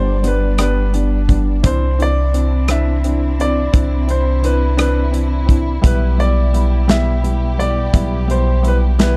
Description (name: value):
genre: six-eight pop ballad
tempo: 57 BPM (dotted quarters)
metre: 6/8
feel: straight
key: unclear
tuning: A4 = 440 Hz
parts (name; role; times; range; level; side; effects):
- clear baby grand piano; melody; 0.0-9.2 s; B4 to E5; -25 LUFS; equal; none
- felt-muted upright piano; accompaniment; 0.0-9.2 s; E3 to E4; -24 LUFS; equal; none
- warm studio string section; sustained chords; 0.0-9.2 s; B2 to D5; -29 LUFS; equal; none
- upright bass; bass; 0.0-9.2 s; G1 to C2; -18 LUFS; equal; none
- natural country drum kit; drums; 0.2-9.2 s; hi-hat, kick drum, rim click, snare drum; -19 LUFS; equal; none
room: small room ambience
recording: dark, warm production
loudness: -16 LUFS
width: mono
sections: 0.0-9.2 A section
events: none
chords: 0.0 G; 1.6 Cadd9; 5.8 Em/B